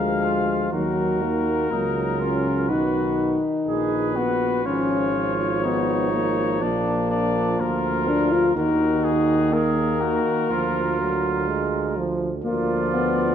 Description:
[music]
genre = classical, brass quintet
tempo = 61 BPM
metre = 4/4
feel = straight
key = Eb minor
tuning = A4 = 440 Hz
[part]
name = clear trumpet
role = melody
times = 0.0-13.3 s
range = Ab4 to F5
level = -28 LUFS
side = left 8 dB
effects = none
[part]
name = mellow trumpet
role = second line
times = 0.0-13.3 s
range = D4 to Bb4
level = -28 LUFS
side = right 6 dB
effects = none
[part]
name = dark French horn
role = accompaniment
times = 0.0-13.3 s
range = Gb3 to F4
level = -24 LUFS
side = left 4 dB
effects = none
[part]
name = warm trombone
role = accompaniment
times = 0.0-13.3 s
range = D#3 to Ab3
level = -28 LUFS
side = right 4 dB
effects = none
[part]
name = warm tuba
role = bass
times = 0.0-13.3 s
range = Ab1 to Eb2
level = -27 LUFS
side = right 4 dB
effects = none
[sound]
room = wet recital hall reverb, RT60 1.6 s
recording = dark, warm production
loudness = -20 LUFS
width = side -8 dB against mid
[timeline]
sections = 0.0-13.3 A section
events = none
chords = 0.0 Bb7/D; 0.7 Ebm; 2.7 B; 4.7 Db13/Ab; 6.6 Bb; 8.6 Ebm; 10.5 Ddim; 12.4 Bb/D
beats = | 0.73 1.72 2.69 3.67 | 4.66 5.64 6.62 7.60 | 8.56 9.53 10.50 11.47 | 12.45

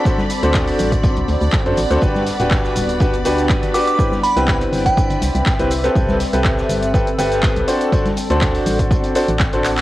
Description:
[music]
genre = piano house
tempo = 122 BPM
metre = 4/4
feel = swing 53% on 16ths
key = unclear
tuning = A4 = 440 Hz
[part]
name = string machine, violins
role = sustained chords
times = 0.0-9.8 s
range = D5 to B5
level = -31 LUFS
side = right 1 dB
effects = ensemble chorus, sidechain pumping, cassette tape
[part]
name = bright grand piano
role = riff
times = 0.0-9.7 s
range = C4 to C5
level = -19 LUFS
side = equal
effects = sidechain pumping, cassette tape
[part]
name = warbly tape-like pad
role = texture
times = 0.0-9.8 s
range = B3 to G5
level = -25 LUFS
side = left 1 dB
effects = chorus, built-in reverb, sidechain pumping, cassette tape
[part]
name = crunchy breakbeat drum kit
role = drums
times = 0.1-9.8 s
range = hi-hat, snare drum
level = -34 LUFS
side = equal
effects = none
[part]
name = electronic kick drum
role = drums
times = 0.1-9.5 s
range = none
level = -19 LUFS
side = equal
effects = small room reverb, cassette tape
[part]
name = house drum kit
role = drums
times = 0.1-9.8 s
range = handclaps, hi-hat, shaker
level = -26 LUFS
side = equal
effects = small room reverb, cassette tape
[part]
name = tambourine and congas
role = percussion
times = 0.1-9.8 s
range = none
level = -28 LUFS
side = left 1 dB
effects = none
[part]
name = organ-like FM bass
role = bass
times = 0.4-9.8 s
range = D1 to F#2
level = -22 LUFS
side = equal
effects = tube saturation, sidechain pumping
[part]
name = glassy synth bell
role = melody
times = 3.7-5.5 s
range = G5 to D6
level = -20 LUFS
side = right 2 dB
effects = chorus, cassette tape, analog delay
[sound]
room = light reverb, small room ambience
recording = home recording on cassette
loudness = -14 LUFS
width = side -16 dB against mid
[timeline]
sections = 0.0-9.8 A section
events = drum fill 9.6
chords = 0.0 D7; 2.0 Gmaj7; 4.0 Cmaj7; 5.7 Am9/C; 7.7 D7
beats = | 0.06 0.55 1.04 1.53 | 2.02 2.51 3.01 3.50 | 3.99 4.48 4.97 5.46 | 5.96 6.45 6.94 7.43 | 7.92 8.41 8.91 9.40

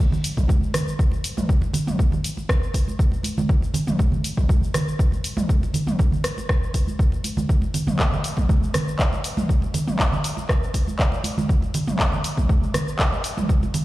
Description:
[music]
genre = house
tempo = 120 BPM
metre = 4/4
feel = straight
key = none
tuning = none
[part]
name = deep house drum kit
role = drums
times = 0.0-13.8 s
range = handclaps, hi-hat, rim click, shaker, toms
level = -26 LUFS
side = equal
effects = none
[part]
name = congas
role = percussion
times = 0.1-13.8 s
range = none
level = -26 LUFS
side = right 2 dB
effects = none
[part]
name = electronic kick drum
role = drums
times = 0.4-13.6 s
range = none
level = -20 LUFS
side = equal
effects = none
[sound]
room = light reverb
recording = played on a big sound system in a bare room, large studio reverb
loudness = -19 LUFS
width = side -17 dB against mid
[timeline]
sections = 0.0-13.8 A section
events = none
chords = none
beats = 0.49 0.99 | 1.49 1.99 2.49 2.99 | 3.49 3.99 4.49 4.99 | 5.49 5.99 6.49 6.99 | 7.49 7.99 8.49 8.99 | 9.49 9.99 10.49 10.99 | 11.49 11.99 12.49 12.99 | 13.49

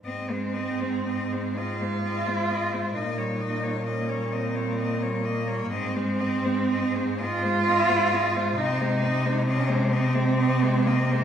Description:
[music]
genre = classical, lyrical piece for cello ensemble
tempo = 42 BPM (dotted quarters)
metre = 6/8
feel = uneven beats, rubato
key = Ab major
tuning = A4 = 435 Hz
[part]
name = rich cello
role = bass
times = 0.0-11.2 s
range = Ab2 to C3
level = -28 LUFS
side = equal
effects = none
[part]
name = rich cello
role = melody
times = 0.1-11.2 s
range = C5 to Eb5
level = -33 LUFS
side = left 5 dB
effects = none
[part]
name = warm cello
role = second line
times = 0.1-11.2 s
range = Bb3 to F4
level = -26 LUFS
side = right 3 dB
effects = none
[part]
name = rich cello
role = accompaniment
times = 0.1-11.2 s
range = G3 to C4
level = -31 LUFS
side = left 2 dB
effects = none
[sound]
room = wet recital hall reverb, RT60 1.6 s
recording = heard from further back in the room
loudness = -23 LUFS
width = side -9 dB against mid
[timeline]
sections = 0.1-11.2 A section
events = none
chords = 0.1 Ab; 2.9 Eb7/Bb; 5.7 Ab; 8.6 Ab/C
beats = | 0.06 1.56 | 2.94 4.32 | 5.71 7.19 | 8.57 9.91

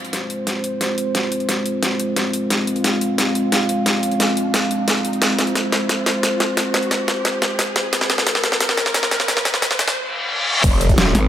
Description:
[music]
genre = dark technical drum and bass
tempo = 177 BPM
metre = 4/4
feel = straight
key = F minor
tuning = A4 = 440 Hz
[part]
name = dark analog pad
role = sustained chords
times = 0.0-10.6 s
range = Ab3 to F5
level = -22 LUFS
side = equal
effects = chorus, sidechain pumping
[part]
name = dubstep drum kit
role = drums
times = 0.0-11.2 s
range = crash cymbal, hi-hat, snare drum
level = -19 LUFS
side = equal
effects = overdrive, high-pass filter on hats, high-pass filter on snare, high-pass filter on cymbals
[part]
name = riser, reverse cymbal and impact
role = sound effects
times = 0.0-11.3 s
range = none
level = -26 LUFS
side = left 1 dB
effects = none
[part]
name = growl bass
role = bass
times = 10.6-11.3 s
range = F1 to Ab1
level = -17 LUFS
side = equal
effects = chorus, tube saturation, sidechain pumping
[part]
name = electronic kick drum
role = drums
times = 10.6-11.0 s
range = none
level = -16 LUFS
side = equal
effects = overdrive
[part]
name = jungle sampler-style drum kit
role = drums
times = 10.6-11.2 s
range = ride cymbal, snare drum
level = -31 LUFS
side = right 1 dB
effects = none
[sound]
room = moderate lush hall reverb, RT60 1.6 s, digital ambience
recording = high-pass filter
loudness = -16 LUFS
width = side -10 dB against mid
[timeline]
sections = 0.0-10.6 A section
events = build-up 0.0-10.6; drum fill 0.0-10.0; riser 0.0-10.0; filter sweep 0.0-10.6; reverse cymbal 10.0-10.6; impact 10.6-11.3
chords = 0.0 Fm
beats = 0.13 0.47 0.81 | 1.15 1.49 1.83 2.17 | 2.50 2.84 3.18 3.52 | 3.86 4.20 4.54 4.88 | 5.22 5.55 5.89 6.23 | 6.57 6.91 7.25 7.59 | 7.93 8.27 8.61 8.95 | 9.28 9.62 9.96 10.30 | 10.64 10.98

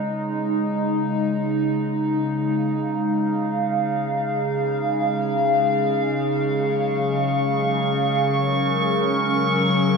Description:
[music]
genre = ambient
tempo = free time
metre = none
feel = none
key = Db major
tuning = A4 = 438 Hz
[part]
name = warbly tape-like pad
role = sustained chords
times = 0.0-10.0 s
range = Db3 to F5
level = -20 LUFS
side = equal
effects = chorus, built-in reverb, phaser, shimmer reverb
[part]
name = analog drone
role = drone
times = 3.3-10.0 s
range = Db3 to Ab3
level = -30 LUFS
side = left 2 dB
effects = chorus
[part]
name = drifting glass-harmonics texture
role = texture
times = 6.9-10.0 s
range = Db6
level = -26 LUFS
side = right 2 dB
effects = chorus, built-in reverb, shimmer reverb
[sound]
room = wet spring reverb, RT60 2.5 s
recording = none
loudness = -20 LUFS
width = side -4 dB against mid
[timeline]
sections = 0.0-10.0 A section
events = fade-in on synth drone 0.0-10.0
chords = 0.0 Dbsus2; 6.2 Gb6/Db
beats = free time

